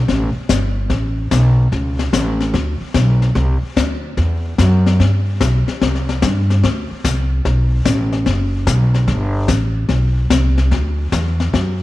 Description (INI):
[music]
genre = country, western swing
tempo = 147 BPM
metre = 4/4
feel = swing 67% on 8ths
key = G major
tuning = A4 = 440 Hz
[part]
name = upright bass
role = bass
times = 0.0-11.8 s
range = F#1 to G2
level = -15 LUFS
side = equal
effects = none
[part]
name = jazz brush drum kit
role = drums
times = 0.1-11.8 s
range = brushed snare drum, hi-hat, kick drum, snare drum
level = -20 LUFS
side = left 5 dB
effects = none
[sound]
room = light reverb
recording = 1960s-style stereo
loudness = -14 LUFS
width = side -16 dB against mid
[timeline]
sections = 0.0-11.8 A section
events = none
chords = none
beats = 0.09 0.49 | 0.90 1.31 1.72 2.13 | 2.54 2.95 3.36 3.77 | 4.18 4.59 5.00 5.41 | 5.81 6.22 6.63 7.04 | 7.45 7.86 8.26 8.67 | 9.08 9.49 9.90 10.30 | 10.71 11.12 11.53